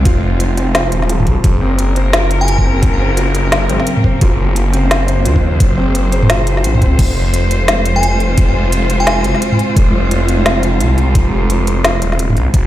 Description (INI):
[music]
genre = half-time drum and bass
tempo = 173 BPM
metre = 4/4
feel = swing 59% on 16ths, half-time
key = F phrygian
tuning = A4 = 441 Hz
[part]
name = warm studio cello section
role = sustained chords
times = 0.0-12.7 s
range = C3 to C5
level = -18 LUFS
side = equal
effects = sidechain pumping
[part]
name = felt-muted upright piano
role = arpeggios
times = 0.0-7.0 s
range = F3 to C5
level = -22 LUFS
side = equal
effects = ping-pong delay
[part]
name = phased detuned saw bass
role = bass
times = 0.0-12.7 s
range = Eb1 to Eb2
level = -14 LUFS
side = equal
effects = phaser
[part]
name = electronic kick drum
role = drums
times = 0.1-12.6 s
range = none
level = -12 LUFS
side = equal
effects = none
[part]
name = organic electronic drum kit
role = drums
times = 0.1-12.6 s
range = crash cymbal, hi-hat, snare drum, toms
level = -17 LUFS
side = equal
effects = none
[part]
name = glassy synth bell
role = melody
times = 2.4-2.6, 8.0-9.5 s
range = Ab5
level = -22 LUFS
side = equal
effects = chorus, ping-pong delay
[sound]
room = light reverb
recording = played on a big sound system in a bare room, stone room reverb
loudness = -11 LUFS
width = side -14 dB against mid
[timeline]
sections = 0.0-7.0 A section; 7.0-12.7 A section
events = drop 0.0-7.0, 7.0-12.7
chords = 0.0 Fm; 1.4 Gb; 7.0 Fm